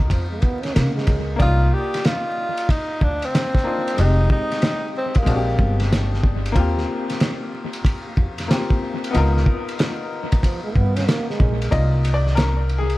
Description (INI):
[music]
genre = hip hop, jazz-hop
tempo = 93 BPM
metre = 4/4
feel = swing 66% on 16ths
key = C minor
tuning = A4 = 440 Hz
[part]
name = bright upright piano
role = accompaniment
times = 0.0-13.0 s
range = Ab3 to Eb5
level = -27 LUFS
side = left 3 dB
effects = analog delay
[part]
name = upright bass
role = bass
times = 0.0-13.0 s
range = F1 to Db3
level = -20 LUFS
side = equal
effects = none
[part]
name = cloth-damped thuddy drum kit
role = drums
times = 0.0-13.0 s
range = hi-hat, kick drum, ride cymbal, snare drum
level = -21 LUFS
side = equal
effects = analog delay
[part]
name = mellow trombone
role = second line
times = 0.1-1.4, 10.4-11.7 s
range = F3 to Db4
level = -28 LUFS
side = right 3 dB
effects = analog delay
[part]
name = breathy tenor saxophone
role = melody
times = 1.4-5.8 s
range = Bb3 to G4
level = -24 LUFS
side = equal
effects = analog delay
[sound]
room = small room ambience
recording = echo-heavy mix, vinyl crackle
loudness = -18 LUFS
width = side -18 dB against mid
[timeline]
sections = 0.0-1.4 A section; 1.4-11.7 B section; 11.7-13.0 C section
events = upright piano solo 11.7-13.0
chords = 0.0 Db13; 1.4 Cm11; 4.0 Fm7; 5.3 Bb13; 6.6 Eb69 (rootless); 9.1 Db13 (rootless); 11.7 Cm11